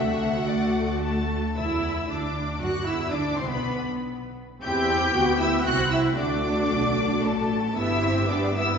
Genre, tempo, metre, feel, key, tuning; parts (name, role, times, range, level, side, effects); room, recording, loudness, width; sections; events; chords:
quick classical-period movement for string orchestra; 115 BPM; 3/4; rubato; A4 = 442 Hz
warm symphonic violin section; melody; 0.0-8.8 s; D5 to G6; -30 LUFS; left 3 dB
bright symphonic violin section; second line; 0.0-8.6 s; A4 to G5; -33 LUFS; left 3 dB
warm symphonic viola section; accompaniment; 0.0-8.8 s; A3 to G4; -28 LUFS; equal
clear symphonic double bass section; bass; 0.0-8.8 s; G1 to G2; -30 LUFS; right 2 dB
rich symphonic cello section; bass; 0.0-8.8 s; D2 to G4; -28 LUFS; right 1 dB
wet concert hall reverb, RT60 2.3 s; heard from further back in the room, nothing above 7.8 kHz; -22 LUFS; side -6 dB against mid
0.0-1.6 A section; 1.6-8.8 B section
0.0 D; 1.6 Dsus2; 2.6 Esus2; 3.1 Bm; 4.6 C/E; 5.7 C; 6.2 D; 7.8 G